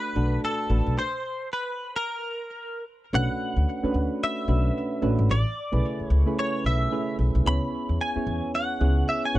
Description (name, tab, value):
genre	R&B, new jack swing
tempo	111 BPM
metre	4/4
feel	swing 60% on 16ths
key	B dorian from 3.1 s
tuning	A4 = 441 Hz
part	direct-recorded clean electric guitar	melody	0.0-9.4 s	A4 to B5	-29 LUFS	equal	ensemble chorus
part	soft electric-piano-like synth keys	accompaniment	0.0-9.4 s	C#3 to C#5	-28 LUFS	right 1 dB	chorus
part	upright bass	bass	0.2-9.4 s	G#1 to E2	-23 LUFS	equal	none
room	little or no reverb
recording	dark, warm production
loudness	-23 LUFS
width	side -15 dB against mid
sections	0.0-3.1 A section; 3.1-9.4 A section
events	stop 1.0-3.1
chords	0.0 Bm7; 1.0 N.C.; 3.1 Bm9; 5.3 Amaj9; 7.5 C#m7